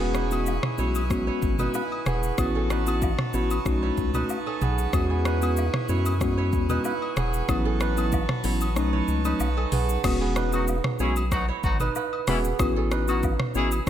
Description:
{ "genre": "afrobeats", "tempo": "94 BPM", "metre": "4/4", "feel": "straight", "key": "E major", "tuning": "A4 = 437 Hz", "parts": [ { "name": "mellow tine electric piano", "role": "accompaniment", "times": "0.0-13.9 s", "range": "F#3 to F#4", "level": "-29 LUFS", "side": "left 2 dB", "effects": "slow stereo tremolo" }, { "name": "pipe organ, full organ", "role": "sustained chords", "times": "0.0-10.0 s", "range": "D#4 to C#6", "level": "-34 LUFS", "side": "right 1 dB", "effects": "none" }, { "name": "kora", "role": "riff", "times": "0.0-13.9 s", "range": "B3 to C#5", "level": "-31 LUFS", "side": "right 8 dB", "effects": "digital delay" }, { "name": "round analog bass", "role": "bass", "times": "0.0-13.9 s", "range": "E1 to F#2", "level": "-27 LUFS", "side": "equal", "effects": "none" }, { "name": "afro-pop drum kit", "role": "drums", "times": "0.1-13.9 s", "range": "crash cymbal, hi-hat, kick drum, rim click, shaker, toms", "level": "-29 LUFS", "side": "equal", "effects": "none" }, { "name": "agogo bells and woodblock", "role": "percussion", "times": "0.3-13.9 s", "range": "none", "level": "-36 LUFS", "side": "left 3 dB", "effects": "none" }, { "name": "clear horn section", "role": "second line", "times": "10.5-13.9 s", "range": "E3 to G#4", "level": "-31 LUFS", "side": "left 2 dB", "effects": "none" } ], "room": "light reverb", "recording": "none", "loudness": "-22 LUFS", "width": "side -10 dB against mid", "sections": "0.0-10.0 A section; 10.0-13.9 B section", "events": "kick muted 8.8-10.0", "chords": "0.0 E6; 2.4 A69; 3.7 B9; 4.9 E6; 7.5 A69; 8.8 B9; 10.0 E6; 12.6 A69" }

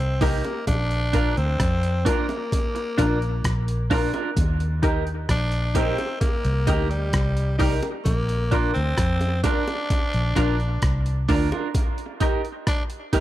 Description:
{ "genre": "dub reggae", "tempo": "65 BPM", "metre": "4/4", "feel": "straight", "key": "Bb major", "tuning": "A4 = 442 Hz", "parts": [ { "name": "growling tenor saxophone", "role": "melody", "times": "0.0-12.8 s", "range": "G3 to D4", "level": "-28 LUFS", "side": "left 1 dB", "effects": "dub echo" }, { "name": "vintage muted fingered electric bass", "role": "bass", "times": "0.0-11.5 s", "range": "Bb1 to F2", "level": "-24 LUFS", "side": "equal", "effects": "none" }, { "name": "electric guitar at the edge of break-up", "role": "accompaniment", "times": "0.2-13.2 s", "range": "D4 to Bb4", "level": "-29 LUFS", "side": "right 7 dB", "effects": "dub echo" }, { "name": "filtered dub chord stab", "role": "stabs", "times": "0.2-13.2 s", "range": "D4 to Bb4", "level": "-30 LUFS", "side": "left 4 dB", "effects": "chorus, dub echo" }, { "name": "breakbeat sampler-style drum kit", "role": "drums", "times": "0.2-13.2 s", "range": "hi-hat, kick drum, rim click", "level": "-24 LUFS", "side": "equal", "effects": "none" }, { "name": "bongos", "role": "percussion", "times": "0.2-13.2 s", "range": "none", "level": "-34 LUFS", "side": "right 3 dB", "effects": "dub echo" } ], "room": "little or no reverb", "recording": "dry, close 1970s-style studio recording", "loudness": "-20 LUFS", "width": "side -14 dB against mid", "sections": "0.0-13.2 A section", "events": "break 11.7-13.2", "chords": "0.0 Eb; 0.7 Bb; 4.4 Eb; 8.1 Bb; 11.7 Eb" }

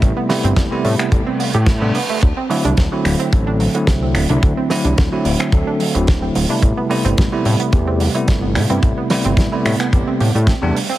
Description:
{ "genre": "nu-disco, nu disco", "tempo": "109 BPM", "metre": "4/4", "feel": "straight", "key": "A dorian", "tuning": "A4 = 440 Hz", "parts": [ { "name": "bell-like tine electric piano", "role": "accompaniment", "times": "0.0-10.8 s", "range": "C3 to A4", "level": "-19 LUFS", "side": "equal", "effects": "medium stereo tremolo, sidechain pumping, tape echo" }, { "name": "analog pluck", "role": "arpeggios", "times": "0.0-10.9 s", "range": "F#3 to G4", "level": "-24 LUFS", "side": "right 4 dB", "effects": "chorus, sidechain pumping, tape echo" }, { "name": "fat analog bass", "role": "bass", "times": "0.0-10.7 s", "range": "D1 to A2", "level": "-18 LUFS", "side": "equal", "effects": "tube saturation, sidechain pumping" }, { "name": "damped 70s drum kit", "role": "drums", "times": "0.0-11.0 s", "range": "finger snaps, hi-hat, snare drum", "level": "-24 LUFS", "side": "right 2 dB", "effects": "none" }, { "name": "kick drum", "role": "drums", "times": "0.0-10.6 s", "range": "none", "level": "-15 LUFS", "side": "equal", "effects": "none" }, { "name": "reverse cymbal", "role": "sound effects", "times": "1.3-2.2 s", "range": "none", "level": "-28 LUFS", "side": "right 2 dB", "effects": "none" } ], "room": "light reverb, small room ambience", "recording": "heavily compressed radio sound, multiband compression", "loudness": "-14 LUFS", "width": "side -15 dB against mid", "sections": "0.0-11.0 A section", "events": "reverse cymbal 1.3-2.2", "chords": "0.0 Am9; 2.2 D7; 6.6 Am9" }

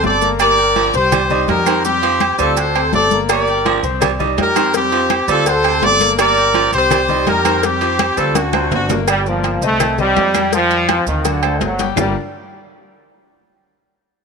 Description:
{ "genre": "latin, salsa", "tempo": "166 BPM", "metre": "4/4", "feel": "straight", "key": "G minor", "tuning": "A4 = 437 Hz", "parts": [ { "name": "brilliant horn section", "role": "melody", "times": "0.0-9.0 s", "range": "C4 to D5", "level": "-15 LUFS", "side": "left 1 dB", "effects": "none" }, { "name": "raspy baritone saxophone", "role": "second line", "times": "0.0-8.8 s", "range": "C3 to G3", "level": "-22 LUFS", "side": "right 13 dB", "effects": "slapback echo" }, { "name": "clear concert grand piano", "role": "accompaniment", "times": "0.0-12.1 s", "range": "F#3 to G6", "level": "-23 LUFS", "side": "left 11 dB", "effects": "none" }, { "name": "upright bass", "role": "bass", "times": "0.0-12.1 s", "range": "G1 to F2", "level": "-23 LUFS", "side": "right 1 dB", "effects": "none" }, { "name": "congas", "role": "percussion", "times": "0.0-12.1 s", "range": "none", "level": "-24 LUFS", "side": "left 9 dB", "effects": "none" }, { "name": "maracas", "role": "percussion", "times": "0.0-12.1 s", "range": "none", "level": "-30 LUFS", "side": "right 16 dB", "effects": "none" }, { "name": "timbales and agogo bells", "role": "percussion", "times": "0.0-12.1 s", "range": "none", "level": "-23 LUFS", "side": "right 15 dB", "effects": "none" }, { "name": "claves", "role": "percussion", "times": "0.4-12.1 s", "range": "none", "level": "-29 LUFS", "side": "left 13 dB", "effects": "none" }, { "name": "cowbell and bongos", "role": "percussion", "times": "3.3-12.1 s", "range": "none", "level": "-25 LUFS", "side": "left 12 dB", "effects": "none" }, { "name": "brilliant trombone section", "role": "melody", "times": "9.1-12.1 s", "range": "D3 to A3", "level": "-17 LUFS", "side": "right 1 dB", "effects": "none" } ], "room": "moderate echo chamber reverb, RT60 2.4 s", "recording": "1960s-style stereo with parts hard left and right", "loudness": "-13 LUFS", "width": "side -5 dB against mid", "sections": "0.0-9.1 A section; 9.1-12.0 B section; 12.0-13.4 C section", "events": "drum fill 8.4-9.1", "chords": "0.4 Gm7; 1.1 Cm; 1.8 Fsus2; 2.6 D7; 3.3 Gm7; 4.0 Cm; 4.7 Fsus2; 5.5 D7; 6.2 Gm7; 6.9 Cm; 7.6 Fsus2; 8.4 D7; 9.1 Gm7; 9.8 Cm; 10.5 Fsus2; 11.2 D7; 12.0 Gm7" }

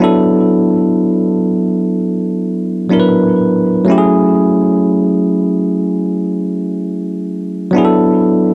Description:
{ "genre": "R&B", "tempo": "62 BPM", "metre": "4/4", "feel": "swing 58% on 16ths", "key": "F# minor", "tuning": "A4 = 440 Hz", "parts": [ { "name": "bell-like tine electric piano", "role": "solo", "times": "0.0-8.5 s", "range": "F#3 to B4", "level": "-10 LUFS", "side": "equal", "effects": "cassette tape, analog delay" } ], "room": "moderate studio ambience, RT60 0.5 s", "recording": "home recording on cassette", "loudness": "-11 LUFS", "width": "side -26 dB against mid", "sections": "0.0-8.5 A section", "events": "none", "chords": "0.0 E9sus4; 3.9 F#m9; 7.7 D69" }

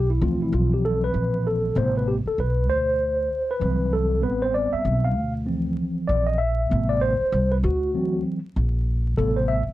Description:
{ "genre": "hip hop", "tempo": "97 BPM", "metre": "4/4", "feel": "swing 62% on 16ths", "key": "unclear", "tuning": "A4 = 440 Hz", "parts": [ { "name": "mellow tine electric piano", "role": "accompaniment", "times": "0.0-9.6 s", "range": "C3 to F5", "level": "-23 LUFS", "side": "equal", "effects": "medium stereo tremolo" }, { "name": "upright bass", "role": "bass", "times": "0.0-9.7 s", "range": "A1 to D2", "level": "-24 LUFS", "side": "equal", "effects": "none" } ], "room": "moderate small room reverb, RT60 0.5 s", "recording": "vinyl crackle", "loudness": "-20 LUFS", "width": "side -15 dB against mid", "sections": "0.0-9.7 A section", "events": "tine electric piano solo 0.0-9.7", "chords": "0.2 Dm7; 1.8 Am9; 2.7 D7; 4.2 Am9; 5.2 Dm7; 6.7 Am9; 7.6 D7; 9.2 Am9" }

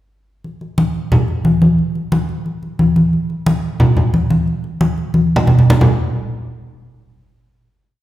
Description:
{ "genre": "latin", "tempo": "179 BPM", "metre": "4/4", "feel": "straight", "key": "none", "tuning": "none", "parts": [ { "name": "congas", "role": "percussion", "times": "0.4-5.9 s", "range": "none", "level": "-13 LUFS", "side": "equal", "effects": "none" } ], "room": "wet recital hall reverb, RT60 1.6 s", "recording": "recorded in a church or concert hall, faint mains hum", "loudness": "-13 LUFS", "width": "side -14 dB against mid", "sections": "0.4-5.8 mambo (horn riffs); 5.8-7.2 final hit", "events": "drum fill 5.1-5.8", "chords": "none" }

